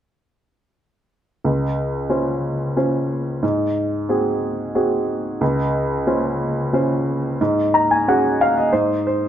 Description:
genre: folk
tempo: 91 BPM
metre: 3/4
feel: straight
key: Db major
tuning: A4 = 439 Hz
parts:
  - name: warm upright piano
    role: melody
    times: 1.4-9.3 s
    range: Db2 to Bb5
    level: -18 LUFS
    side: equal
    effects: none
room: light reverb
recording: none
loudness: -18 LUFS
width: side -10 dB against mid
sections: 1.4-9.3 A section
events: upright piano fill 7.4-9.3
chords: 1.4 Dbmaj7; 3.4 Ab7; 5.4 Dbmaj7; 7.4 Ab7sus4; 8.7 N.C.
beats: | 1.44 2.10 2.76 | 3.43 4.09 4.75 | 5.41 6.07 6.73 | 7.40 8.06 8.72

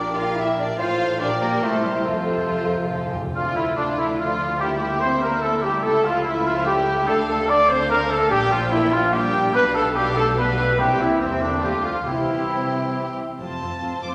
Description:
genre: quick classical-period movement for symphony orchestra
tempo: 144 BPM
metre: 3/4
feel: rubato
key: F major, D minor from 3.3 s, F major from 8.3 s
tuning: A4 = 440 Hz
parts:
  - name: warm chamber violin section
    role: melody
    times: 0.0-14.1 s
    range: G4 to D6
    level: -36 LUFS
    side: equal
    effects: none
  - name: clear chamber violin section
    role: second line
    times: 0.0-14.1 s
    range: C4 to F5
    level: -33 LUFS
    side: equal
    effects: none
  - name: mellow hollow concert flute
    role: second line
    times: 0.0-13.2 s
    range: C5 to D6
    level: -31 LUFS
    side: equal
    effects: none
  - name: mellow oboe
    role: second line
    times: 0.0-13.2 s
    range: C4 to D5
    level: -30 LUFS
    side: equal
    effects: none
  - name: warm clarinet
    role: second line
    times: 0.0-13.2 s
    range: C4 to D5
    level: -29 LUFS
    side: equal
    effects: none
  - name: warm bassoon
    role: accompaniment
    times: 0.0-3.1 s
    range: A2 to C3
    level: -34 LUFS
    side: equal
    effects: none
  - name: warm symphonic viola section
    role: accompaniment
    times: 0.0-14.1 s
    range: G3 to C5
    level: -35 LUFS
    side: equal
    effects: none
  - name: rich chamber cello section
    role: bass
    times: 0.0-14.1 s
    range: F2 to F4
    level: -33 LUFS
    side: equal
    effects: none
  - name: rich chamber double bass section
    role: bass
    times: 0.0-14.1 s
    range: F1 to F2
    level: -34 LUFS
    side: equal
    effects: none
  - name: dark French horn section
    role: sustained chords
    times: 0.8-14.1 s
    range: C3 to C5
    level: -34 LUFS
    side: equal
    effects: none
  - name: timpani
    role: percussion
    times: 2.1-3.3, 10.8-12.7 s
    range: F2 to C3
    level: -38 LUFS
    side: equal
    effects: none
  - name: clear trumpet section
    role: stabs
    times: 3.3-13.2 s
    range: C4 to D5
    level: -26 LUFS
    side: equal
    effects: none
room: wet concert hall reverb, RT60 1.8 s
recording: none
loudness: -21 LUFS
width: mono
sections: 0.0-3.3 A section; 3.3-13.4 B section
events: timpani fill 2.1-3.3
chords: 0.0 Gm/Bb; 0.8 F/A; 1.2 Gm/Bb; 1.6 C7; 2.1 F; 3.3 Dm; 4.6 C13/D; 5.8 A/C#; 7.1 Dm; 8.3 Gm/Bb; 9.5 G7/B; 10.8 C7; 11.6 Dm; 12.1 C; 13.4 F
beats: 0.39 | 0.79 1.21 1.63 | 2.06 2.49 2.92 | 3.35 3.77 4.19 | 4.60 5.02 5.43 | 5.84 6.25 6.67 | 7.08 7.49 7.90 | 8.31 8.71 9.13 | 9.54 9.95 10.37 | 10.79 11.21 11.64 | 12.08 12.52 12.97 | 13.40 13.82

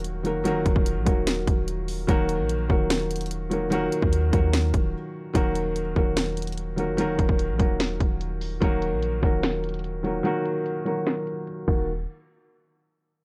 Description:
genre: hip hop, trap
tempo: 147 BPM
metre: 4/4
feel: half-time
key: Eb minor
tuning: A4 = 440 Hz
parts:
  - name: felt-muted upright piano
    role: accompaniment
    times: 0.0-11.9 s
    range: Eb3 to Bb4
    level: -28 LUFS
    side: equal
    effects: none
  - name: warm 808-style bass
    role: bass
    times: 0.0-12.1 s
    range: Eb1 to Eb2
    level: -31 LUFS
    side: equal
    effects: none
  - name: trap drum kit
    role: drums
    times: 0.0-11.8 s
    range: crash cymbal, hi-hat, kick drum, snare drum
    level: -27 LUFS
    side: equal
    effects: none
room: little or no reverb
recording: dry, gritty hardware recording, cassette tape, low-pass filter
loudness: -25 LUFS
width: mono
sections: 0.0-5.4 A section; 5.4-11.9 B section; 11.9-13.2 C section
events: break 4.9-5.4; filter sweep 5.4-11.9; kick muted 10.2-11.9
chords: 0.0 Ebm; 11.9 N.C.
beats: 0.04 | 0.45 0.86 1.27 1.68 | 2.09 2.49 2.90 3.31 | 3.72 4.13 4.54 4.94 | 5.35 5.76 6.17 6.58 | 6.98 7.39 7.80 8.21 | 8.62 9.03 9.43 9.84 | 10.25 10.66 11.07 11.47 | 11.88

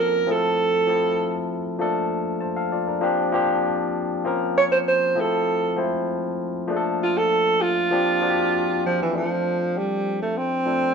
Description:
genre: soul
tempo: 98 BPM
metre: 4/4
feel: straight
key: F major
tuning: A4 = 443 Hz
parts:
  - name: mellow alto saxophone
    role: melody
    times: 0.0-10.9 s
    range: E3 to Db5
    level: -20 LUFS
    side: right 3 dB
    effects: none
  - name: barky tine electric piano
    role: accompaniment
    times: 0.0-10.9 s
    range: F3 to A5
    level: -24 LUFS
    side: left 3 dB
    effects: none
room: wet stone room reverb, RT60 1.0 s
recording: band playing live in one room, nothing above 7.7 kHz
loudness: -20 LUFS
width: side -6 dB against mid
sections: 0.0-9.1 A section; 9.1-10.9 B section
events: none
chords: 0.3 Fmaj7; 1.8 Bbmaj7; 3.0 C9sus4; 4.2 Bbmadd9; 5.2 Fmaj7; 6.7 Bbmaj7; 7.9 C9sus4; 9.1 F6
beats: 0.58 1.20 | 1.80 2.42 3.02 3.63 | 4.25 4.86 5.46 6.08 | 6.68 7.29 7.91 8.52 | 9.13 9.74 10.35

